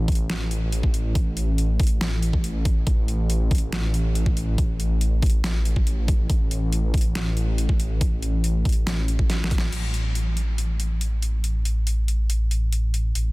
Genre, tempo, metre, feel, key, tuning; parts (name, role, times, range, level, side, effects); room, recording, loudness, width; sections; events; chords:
future bass; 140 BPM; 4/4; half-time; A4 = 441 Hz
wide detuned saw bass; bass; 0.0-13.3 s; A1; -23 LUFS; equal; chorus, sidechain pumping
dubstep drum kit; drums; 0.1-13.2 s; crash cymbal, hi-hat, snare drum; -31 LUFS; equal; overdrive, studio ambience
electronic kick drum; drums; 0.1-9.6 s; -21 LUFS; equal; overdrive, studio ambience
little or no reverb; dense, heavily limited modern master; -20 LUFS; side -22 dB against mid
0.0-9.7 A section; 9.7-13.3 B section
drop 0.0-9.7; drum fill 9.3-9.7; band accent 9.6